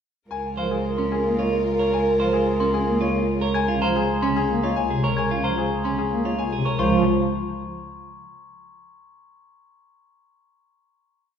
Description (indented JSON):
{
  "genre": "classical, minimalist pattern music",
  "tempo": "111 BPM",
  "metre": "3/4",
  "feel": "straight",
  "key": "Db major",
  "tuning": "A4 = 438 Hz",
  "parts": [
    { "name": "bright grand piano", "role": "melody", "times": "0.3-7.0 s", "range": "Ab4 to Ab5", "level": "-28 LUFS", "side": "left 6 dB", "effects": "none" },
    { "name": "mellow French horn", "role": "second line", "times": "0.3-3.3 s", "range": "Bb4", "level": "-24 LUFS", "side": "right 2 dB", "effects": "none" },
    { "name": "rich chamber string section", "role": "sustained chords", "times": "0.3-3.4 s", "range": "F4 to Bb4", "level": "-32 LUFS", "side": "equal", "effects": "none" },
    { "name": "rich cello", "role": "bass", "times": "0.3-7.0 s", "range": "Db2", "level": "-26 LUFS", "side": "right 2 dB", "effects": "none" },
    { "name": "pipe organ, strings celeste", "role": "accompaniment", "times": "0.6-7.0 s", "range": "C3 to Bb3", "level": "-27 LUFS", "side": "equal", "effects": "none" },
    { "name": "clean electric guitar", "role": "arpeggios", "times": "0.6-7.0 s", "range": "Db4 to C5", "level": "-27 LUFS", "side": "right 2 dB", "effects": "none" },
    { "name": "glockenspiel with rubber mallets", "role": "arpeggios", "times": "1.0-7.0 s", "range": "Bb5 to Ab6", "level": "-32 LUFS", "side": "left 3 dB", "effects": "none" }
  ],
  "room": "wet scoring stage reverb, RT60 1.7 s",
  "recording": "heard from further back in the room",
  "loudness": "-20 LUFS",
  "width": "side -8 dB against mid",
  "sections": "0.3-6.8 A section; 6.8-8.4 final chord",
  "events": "none",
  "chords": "0.3 Db6; 6.8 Db"
}